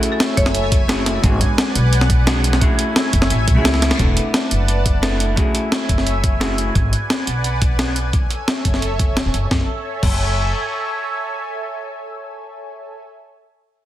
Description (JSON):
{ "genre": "liquid drum and bass", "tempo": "174 BPM", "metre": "4/4", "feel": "straight", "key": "F# minor", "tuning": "A4 = 440 Hz", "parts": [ { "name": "hollow-body jazz guitar", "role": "accompaniment", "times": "0.0-6.7 s", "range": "G#3 to A4", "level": "-23 LUFS", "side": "equal", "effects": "tape echo" }, { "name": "lush unison pad", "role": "sustained chords", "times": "0.0-13.0 s", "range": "A3 to A5", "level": "-25 LUFS", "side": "equal", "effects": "chorus, phaser, vintage 12-bit sampler grit, sidechain pumping" }, { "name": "breakbeat sampler-style drum kit", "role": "drums", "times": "0.0-10.1 s", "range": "crash cymbal, hi-hat, snare drum", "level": "-20 LUFS", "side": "equal", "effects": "none" }, { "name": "marimba with hard mallets", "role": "melody", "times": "0.4-0.9 s", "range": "C#5", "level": "-27 LUFS", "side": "equal", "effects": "tape echo" }, { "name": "upright bass", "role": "bass", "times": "0.4-10.5 s", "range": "E1 to C#2", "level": "-19 LUFS", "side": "equal", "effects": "none" }, { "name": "electronic kick drum", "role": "drums", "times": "0.4-10.1 s", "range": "none", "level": "-18 LUFS", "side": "equal", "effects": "none" } ], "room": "light reverb", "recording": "dense, heavily limited modern master", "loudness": "-15 LUFS", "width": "side -13 dB against mid", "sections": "0.0-4.0 A section; 4.0-9.5 B section; 9.5-12.3 C section", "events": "drop 0.0-4.0; drum fill 3.7; band accent 3.9", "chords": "0.0 F#m9; 1.2 G#m7b5; 2.6 F#m9; 4.0 E7sus4; 5.4 F#m9; 6.8 G#m7b5; 8.1 F#m9", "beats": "0.20 0.55 0.89 | 1.24 1.58 1.93 2.27 | 2.62 2.96 3.31 3.65 | 3.99 4.34 4.68 5.03 | 5.37 5.72 6.06 6.41 | 6.75 7.10 7.44 7.79 | 8.13 8.48 8.82 9.17 | 9.51 9.86 10.20 10.55 | 10.89 11.24 11.58 11.93" }